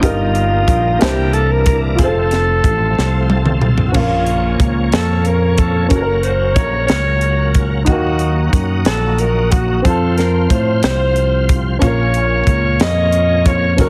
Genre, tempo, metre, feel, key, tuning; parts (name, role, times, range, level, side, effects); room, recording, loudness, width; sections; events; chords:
slow gospel; 61 BPM (dotted quarters); 6/8; straight; Bb harmonic minor; A4 = 439 Hz
breathy alto saxophone; melody; 0.0-13.9 s; F4 to Eb5; -21 LUFS; equal
warm upright piano; accompaniment; 0.0-13.9 s; G2 to A5; -24 LUFS; equal
bright tonewheel organ; sustained chords; 0.0-13.9 s; E3 to Db5; -27 LUFS; equal; slow rotary speaker, overdrive, chorus vibrato
modern bright fingered electric bass; bass; 0.0-13.9 s; F1 to A2; -19 LUFS; equal
crisp fusion drum kit; drums; 0.0-13.9 s; crash cymbal, hi-hat, kick drum, snare drum, toms; -20 LUFS; equal
small room ambience; heavily compressed radio sound, multiband compression; -15 LUFS; mono
0.0-3.9 A section; 3.9-13.9 A section
drum fill 3.0-3.9
0.0 Eb/G; 1.0 C13; 2.0 F; 3.9 Bbm; 5.9 Gb; 7.9 Ebm; 9.8 F; 11.8 Bbm